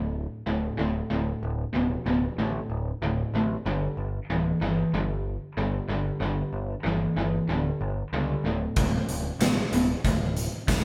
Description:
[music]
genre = classic rock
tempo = 94 BPM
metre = 4/4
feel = straight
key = unclear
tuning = A4 = 439 Hz
[part]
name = raw garage guitar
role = riff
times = 0.0-10.8 s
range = D2 to E3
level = -33 LUFS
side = equal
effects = overdrive
[part]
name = tight distorted guitar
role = riff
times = 0.0-10.8 s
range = D2 to E3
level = -33 LUFS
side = equal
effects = distortion
[part]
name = growling picked electric bass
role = bass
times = 0.0-10.8 s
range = D1 to C#2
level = -33 LUFS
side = equal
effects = overdrive
[part]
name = big rock drum kit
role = drums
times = 8.8-10.8 s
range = hi-hat, kick drum, snare drum, tambourine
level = -28 LUFS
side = equal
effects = none
[sound]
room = wet stone room reverb, RT60 1.1 s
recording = band playing live in one room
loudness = -28 LUFS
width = mono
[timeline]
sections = 0.0-10.8 A section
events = none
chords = 0.0 D5; 3.7 G5; 8.4 D5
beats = 0.48 | 1.11 1.75 2.39 3.03 | 3.66 4.30 4.94 5.58 | 6.22 6.86 7.49 8.13 | 8.77 9.41 10.04 10.68

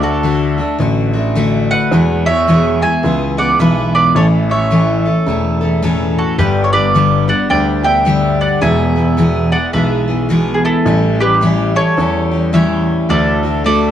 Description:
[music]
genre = honky-tonk and classic country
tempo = 107 BPM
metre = 4/4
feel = swing 62% on 8ths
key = D major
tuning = A4 = 440 Hz
[part]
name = mandolin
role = melody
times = 0.0-13.9 s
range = E4 to G#5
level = -16 LUFS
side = right 2 dB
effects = none
[part]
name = picked steel-string acoustic guitar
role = accompaniment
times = 0.0-13.9 s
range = E2 to A4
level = -14 LUFS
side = left 1 dB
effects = none
[part]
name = warm grand piano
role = bass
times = 0.0-13.9 s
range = E1 to E2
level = -18 LUFS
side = equal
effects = none
[sound]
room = light reverb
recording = dark, warm production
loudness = -11 LUFS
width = side -10 dB against mid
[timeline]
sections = 0.0-13.9 A section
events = none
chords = 0.0 D; 1.9 E; 4.2 A; 6.4 G; 8.6 E; 10.9 A7; 13.1 D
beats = 0.24 0.80 1.36 | 1.92 2.48 3.04 3.59 | 4.15 4.71 5.27 5.83 | 6.39 6.95 7.51 8.06 | 8.62 9.18 9.74 10.30 | 10.86 11.42 11.97 12.53 | 13.09 13.65

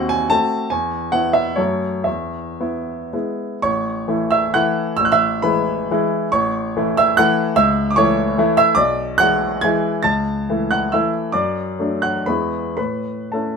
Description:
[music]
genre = classical, romantic triple-time dance for piano with dotted rhythms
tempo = 105-158 BPM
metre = 3/4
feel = rubato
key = A major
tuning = A4 = 444 Hz
[part]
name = clear baby grand piano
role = solo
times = 0.0-13.6 s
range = A1 to A6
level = -16 LUFS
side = equal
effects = none
[sound]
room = light reverb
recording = minimal, uncompressed stereo recording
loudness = -16 LUFS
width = side -5 dB against mid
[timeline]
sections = 0.0-3.6 A section; 3.6-13.6 B section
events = none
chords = 0.0 D#dim7; 0.7 E; 1.6 F#m; 2.1 E; 3.6 A; 5.0 E/A; 6.3 A; 7.6 A/C#; 8.8 E7/B; 10.0 A/C#; 11.3 D/F#; 12.3 E; 12.8 A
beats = 0.31 | 0.70 1.13 1.58 | 2.06 2.61 3.13 | 3.62 4.08 4.55 | 4.99 5.43 5.89 | 6.31 6.74 7.16 | 7.55 7.96 8.37 | 8.77 9.18 9.62 | 10.05 10.48 10.93 | 11.34 11.78 12.27 | 12.77 13.32

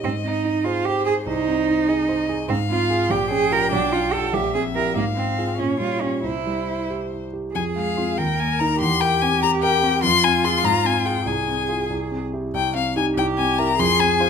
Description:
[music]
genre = quick classical-period movement for piano trio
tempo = 97 BPM (dotted quarters)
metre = 6/8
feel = rubato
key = F minor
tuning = A4 = 440 Hz
[part]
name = clear violin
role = melody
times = 0.0-14.3 s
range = C5 to C6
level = -23 LUFS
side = left 8 dB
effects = none
[part]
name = clear cello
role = second line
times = 0.0-14.3 s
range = Bb3 to Bb4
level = -23 LUFS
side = right 5 dB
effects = none
[part]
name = warm concert grand piano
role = accompaniment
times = 0.0-14.3 s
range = Bb1 to C5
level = -24 LUFS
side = equal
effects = none
[sound]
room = moderate large studio reverb, RT60 0.9 s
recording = minimal, uncompressed stereo recording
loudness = -19 LUFS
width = side -6 dB against mid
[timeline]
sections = 0.0-7.5 A section; 7.5-14.3 B section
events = none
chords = 0.0 Ab; 1.3 Ab/C; 2.5 Fm/Ab; 3.1 Gm7b5/Bb; 3.7 G7/B; 4.3 C7/Bb; 5.0 Fm/Ab; 5.6 Gm7b5/Bb; 6.2 C; 7.5 Fm; 8.2 Eb5; 8.8 C7/E; 10.0 Fm; 10.7 Fm/Ab; 11.3 Fm/C; 11.9 C; 12.5 Cm; 13.2 C7; 13.8 Fm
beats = | 0.04 0.65 | 1.26 1.88 | 2.49 3.10 | 3.72 4.34 | 4.96 5.59 | 6.24 6.90 | 7.55 8.18 | 8.80 9.43 | 10.04 10.65 | 11.28 11.91 | 12.55 13.17 | 13.79

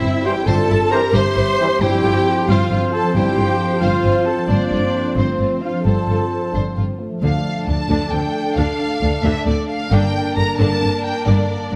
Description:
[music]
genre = cinematic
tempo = 89 BPM (dotted quarters)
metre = 6/8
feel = straight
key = D minor from 7.2 s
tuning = A4 = 440 Hz
[part]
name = warm symphonic violin section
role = melody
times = 0.0-11.8 s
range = E4 to Bb5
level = -29 LUFS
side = equal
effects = none
[part]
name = concert flute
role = second line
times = 0.0-6.5 s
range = C5 to C6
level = -29 LUFS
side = equal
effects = none
[part]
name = mellow clarinet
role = second line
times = 0.0-6.5 s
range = A3 to G4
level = -27 LUFS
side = equal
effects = none
[part]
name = warm symphonic violin section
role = second line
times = 0.0-11.8 s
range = D4 to C6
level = -29 LUFS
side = equal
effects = none
[part]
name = warm symphonic viola section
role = accompaniment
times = 0.0-11.8 s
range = D3 to C5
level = -26 LUFS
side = equal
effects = none
[part]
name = concert harp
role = arpeggios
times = 0.0-11.8 s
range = G2 to D6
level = -29 LUFS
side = equal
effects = none
[part]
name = dark symphonic cello section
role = bass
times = 0.0-11.8 s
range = D2 to G2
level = -25 LUFS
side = equal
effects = none
[part]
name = dark symphonic double bass section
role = bass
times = 0.0-11.8 s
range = G1 to D2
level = -24 LUFS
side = equal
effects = none
[part]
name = dark French horn section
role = sustained chords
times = 0.2-11.8 s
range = F3 to G4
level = -29 LUFS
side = equal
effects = none
[part]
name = mellow trumpet section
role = stabs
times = 0.2-7.0 s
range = C5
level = -28 LUFS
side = equal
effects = none
[part]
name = dark trombone section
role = sustained chords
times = 0.3-7.0 s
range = E3 to C4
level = -29 LUFS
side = equal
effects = none
[part]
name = timpani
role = percussion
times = 7.2-7.9 s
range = D3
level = -26 LUFS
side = equal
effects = none
[sound]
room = moderate scoring stage reverb, RT60 1.6 s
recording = none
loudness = -18 LUFS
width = mono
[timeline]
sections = 0.0-7.2 A section; 7.2-11.8 B section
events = none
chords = 0.0 C/G; 1.8 F/G; 7.2 Dm; 9.9 Gm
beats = | 0.47 1.14 | 1.81 2.48 | 3.15 3.82 | 4.49 5.17 | 5.85 6.54 | 7.22 7.90 | 8.57 9.24 | 9.91 10.58 | 11.26

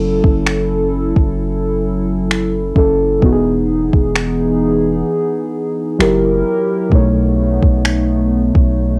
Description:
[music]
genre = contemporary R&B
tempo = 65 BPM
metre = 4/4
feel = swing 54% on 16ths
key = F# dorian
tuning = A4 = 440 Hz
[part]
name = muted felt-like synth keys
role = accompaniment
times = 0.0-9.0 s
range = B2 to C#5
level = -19 LUFS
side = equal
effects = chorus, cassette tape
[part]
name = hollow soft pad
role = sustained chords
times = 0.0-9.0 s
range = E3 to A#4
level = -23 LUFS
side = equal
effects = chorus, sidechain pumping, cassette tape
[part]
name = long sustained 808-style bass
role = bass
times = 0.0-9.0 s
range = E1 to B1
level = -22 LUFS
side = equal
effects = none
[part]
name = smooth R&B drum kit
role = drums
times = 0.2-8.7 s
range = finger snaps, kick drum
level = -16 LUFS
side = equal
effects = overdrive, cassette tape
[sound]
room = light reverb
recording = home recording on cassette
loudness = -15 LUFS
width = mono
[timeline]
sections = 0.0-9.0 A section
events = none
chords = 0.0 F#m7; 3.2 Emaj7; 6.0 F#7b9; 6.9 B9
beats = 0.46 1.38 2.30 | 3.23 4.15 5.07 5.99 | 6.92 7.84 8.76

